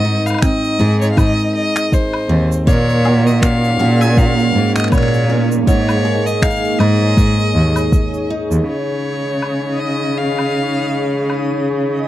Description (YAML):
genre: folktronica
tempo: 80 BPM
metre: 4/4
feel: swing 56% on 16ths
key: Db major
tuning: A4 = 444 Hz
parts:
  - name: clear violin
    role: melody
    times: 0.0-11.3 s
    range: C5 to Ab5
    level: -22 LUFS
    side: left 1 dB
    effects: tape echo
  - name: warm analog pad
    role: sustained chords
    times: 0.0-12.1 s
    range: Bb3 to F5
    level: -22 LUFS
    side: right 2 dB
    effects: chorus
  - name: picked steel-string acoustic guitar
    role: arpeggios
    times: 0.0-9.3 s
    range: Ab2 to Bb4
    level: -21 LUFS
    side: equal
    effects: none
  - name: rich cello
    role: bass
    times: 0.0-12.1 s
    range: Eb2 to Db3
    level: -16 LUFS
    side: equal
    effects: none
  - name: electronic woodblock, shaker and finger snaps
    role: drums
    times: 0.3-11.5 s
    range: none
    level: -24 LUFS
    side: left 1 dB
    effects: low-pass filter on perc, low-pass filter on snare, low-pass filter on room
  - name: electronic kick drum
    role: drums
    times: 0.4-8.1 s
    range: none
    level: -15 LUFS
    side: equal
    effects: none
  - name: backwards swelling texture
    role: texture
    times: 9.1-12.1 s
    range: Eb5 to Eb6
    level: -30 LUFS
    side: left 3 dB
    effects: built-in reverb
room: little or no reverb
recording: dry, close 1970s-style studio recording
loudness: -13 LUFS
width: side -14 dB against mid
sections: 0.0-8.7 A section; 8.7-12.1 B section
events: none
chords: 0.0 Ab; 2.7 Gbadd9/Bb; 5.7 Absus2; 8.7 Db